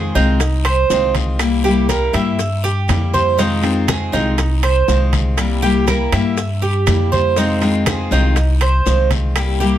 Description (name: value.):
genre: latin, Cuban son and guajira.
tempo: 121 BPM.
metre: 4/4.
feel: straight.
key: F minor.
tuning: A4 = 441 Hz.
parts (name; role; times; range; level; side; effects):
picked steel-string acoustic guitar; accompaniment; 0.0-9.8 s; C3 to G4; -19 LUFS; left 4 dB; none.
Cuban tres; arpeggios; 0.0-9.8 s; Eb4 to E5; -19 LUFS; right 5 dB; none.
upright bass; bass; 0.0-9.8 s; C2 to G2; -18 LUFS; equal; none.
bongos; percussion; 0.2-9.8 s; none; -28 LUFS; left 6 dB; none.
congas; percussion; 0.2-9.8 s; none; -26 LUFS; left 2 dB; none.
guiro; percussion; 0.2-9.8 s; none; -32 LUFS; left 6 dB; none.
maracas; percussion; 0.2-9.8 s; none; -32 LUFS; right 7 dB; none.
timbales; percussion; 0.4-9.6 s; none; -26 LUFS; right 7 dB; none.
claves; percussion; 0.7-9.6 s; none; -30 LUFS; left 4 dB; none.
room: light reverb.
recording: none.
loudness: -14 LUFS.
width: side -11 dB against mid.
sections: 0.0-9.8 A section.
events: none.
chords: 0.0 Fm7; 1.4 C7; 3.4 Fm7; 5.4 C7; 7.4 Fm7.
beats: 0.40 0.90 | 1.40 1.90 2.40 2.89 | 3.39 3.89 4.39 4.88 | 5.38 5.88 6.38 6.88 | 7.37 7.87 8.37 8.86 | 9.36.